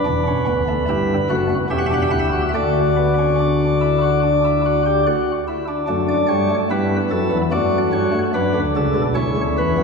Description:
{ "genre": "classical, baroque-style 4-part fugue for pipe organ", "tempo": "73 BPM", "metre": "4/4", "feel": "straight", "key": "D major", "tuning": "A4 = 440 Hz", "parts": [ { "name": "chamber organ, sparkling flutes", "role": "solo", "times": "0.0-9.8 s", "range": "D1 to F#5", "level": "-16 LUFS", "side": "left 1 dB", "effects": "none" } ], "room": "wet church reverb, RT60 3.0 s", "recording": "recorded in a church or concert hall, small room ambience", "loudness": "-16 LUFS", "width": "side -4 dB against mid", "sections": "0.0-5.9 A section; 5.9-9.8 B section", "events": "none", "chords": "0.0 Bm; 0.9 Em/G; 1.7 Em13; 2.5 D; 5.9 D/F#; 9.2 A/C# (rootless)" }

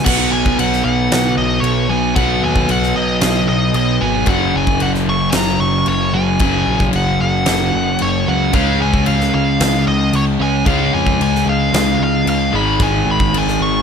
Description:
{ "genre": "hard rock", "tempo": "113 BPM", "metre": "4/4", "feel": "straight", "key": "unclear", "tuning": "A4 = 438 Hz", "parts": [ { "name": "nasal lead guitar with a parked wah", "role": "melody", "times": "0.0-13.8 s", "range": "C#5 to C#6", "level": "-19 LUFS", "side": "equal", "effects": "overdrive" }, { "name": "crunchy overdriven guitar", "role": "riff", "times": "0.0-13.8 s", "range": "F#2 to C#4", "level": "-20 LUFS", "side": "right 11 dB", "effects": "none" }, { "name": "overdriven semi-hollow guitar", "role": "riff", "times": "0.0-13.8 s", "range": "F#2 to C#4", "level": "-19 LUFS", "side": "left 14 dB", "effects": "none" }, { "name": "fuzz picked electric bass", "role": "bass", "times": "0.1-13.8 s", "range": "F#1 to E#2", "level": "-21 LUFS", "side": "equal", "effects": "overdrive" }, { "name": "huge arena drum kit", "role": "drums", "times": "0.1-13.5 s", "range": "crash cymbal, kick drum, snare drum", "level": "-21 LUFS", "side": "equal", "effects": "none" } ], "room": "small room ambience", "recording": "none", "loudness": "-13 LUFS", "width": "side -6 dB against mid", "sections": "0.1-13.8 A section", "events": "none", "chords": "0.1 B; 4.3 F#5; 8.5 C#; 12.5 G#5" }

